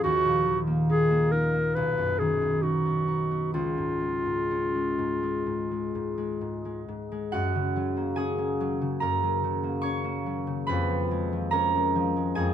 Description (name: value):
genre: classical, romantic duo for clarinet and harp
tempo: 62-74 BPM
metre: 4/4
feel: rubato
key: F# major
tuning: A4 = 444 Hz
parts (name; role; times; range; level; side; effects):
- warm clarinet; melody; 0.0-6.8 s; E#4 to B4; -26 LUFS; equal; none
- concert harp; accompaniment; 0.0-12.5 s; B1 to C#6; -26 LUFS; equal; none
room: light reverb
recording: none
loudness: -24 LUFS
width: side -9 dB against mid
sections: 0.0-7.3 A section; 7.3-12.5 B section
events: none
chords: 0.0 D#5; 1.8 B; 3.5 C#; 7.3 F#; 10.7 C#7/E#